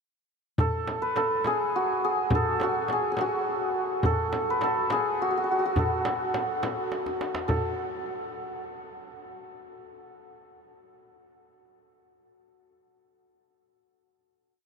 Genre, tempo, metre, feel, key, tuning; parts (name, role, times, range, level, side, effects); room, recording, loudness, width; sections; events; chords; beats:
Persian modal ensemble; 70 BPM (dotted quarters); 6/8; straight; A4 = 440 Hz
santur; melody; 0.6-8.9 s; F#4 to B4; -26 LUFS; equal; ping-pong delay
frame drum; percussion; 0.6-7.8 s; -34 LUFS; left 1 dB
tombak; percussion; 0.6-7.8 s; -34 LUFS; right 1 dB
wet huge ambient reverb, RT60 7.4 s; dreamy mix soaked in reverb; -25 LUFS; side -5 dB against mid
0.6-7.5 A section; 7.5-9.2 final note
drum fill 6.9-7.5
| 0.58 1.45 | 2.31 3.17 | 4.04 4.90 | 5.76 6.63 | 7.49 8.35